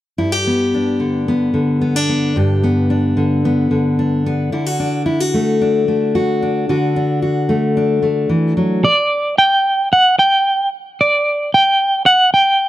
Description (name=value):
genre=folk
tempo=111 BPM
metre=4/4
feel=straight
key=G major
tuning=A4 = 439 Hz
part: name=fingerpicked steel-string acoustic guitar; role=accompaniment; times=0.2-8.8 s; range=G2 to G4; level=-14 LUFS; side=left 1 dB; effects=none
part: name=electric guitar at the edge of break-up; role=melody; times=8.8-12.7 s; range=D5 to G5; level=-11 LUFS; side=right 1 dB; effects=harmonic tremolo
room=studio reverb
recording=dry, close 1970s-style studio recording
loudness=-13 LUFS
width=side -14 dB against mid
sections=0.2-8.8 A section; 8.8-12.7 B section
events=none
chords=0.2 G; 4.5 D; 8.8 N.C.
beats=| 0.19 0.73 1.27 1.81 | 2.35 2.89 3.43 3.97 | 4.51 5.05 5.59 6.13 | 6.67 7.21 7.75 8.29 | 8.83 9.37 9.91 10.45 | 10.98 11.52 12.06 12.60